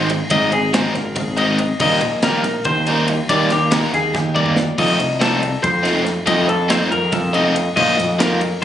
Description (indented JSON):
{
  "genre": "math rock and midwest emo",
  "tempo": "282 BPM (eighths)",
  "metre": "7/8",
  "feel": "straight",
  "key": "Eb major",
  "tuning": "A4 = 441 Hz",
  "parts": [
    { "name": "clean electric guitar", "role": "arpeggios", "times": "0.0-8.6 s", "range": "G4 to Eb5", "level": "-19 LUFS", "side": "left 2 dB", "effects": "none" },
    { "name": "biting overdriven guitar", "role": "riff", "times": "0.0-8.6 s", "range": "Eb3 to F4", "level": "-20 LUFS", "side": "right 1 dB", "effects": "none" },
    { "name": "growling picked electric bass", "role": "bass", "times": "0.0-8.5 s", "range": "Ab1 to F2", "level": "-21 LUFS", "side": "equal", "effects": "overdrive" },
    { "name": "modern studio drum kit", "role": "drums", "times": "0.1-8.5 s", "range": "crash cymbal, kick drum, ride cymbal, snare drum, toms", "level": "-24 LUFS", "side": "equal", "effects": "none" }
  ],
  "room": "light reverb",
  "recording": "recorded on a phone in the room, club reverb, compression, nothing above 10.4 kHz",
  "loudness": "-15 LUFS",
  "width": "side -10 dB against mid",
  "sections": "0.0-8.6 A section",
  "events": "drum fill 4.1-4.8",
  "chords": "0.0 Abmaj7; 1.8 Ebmaj7; 4.8 F7; 7.8 Bbsus4",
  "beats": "0.10 | 0.31 0.52 0.74 0.95 1.16 1.38 1.59 | 1.80 2.02 2.23 2.44 2.66 2.87 3.08 | 3.29 3.51 3.72 3.94 4.15 4.36 4.57 | 4.79 5.00 5.21 5.43 5.64 5.85 6.07 | 6.28 6.49 6.71 6.92 7.13 7.34 7.56 | 7.77 7.98 8.20 8.41 8.62"
}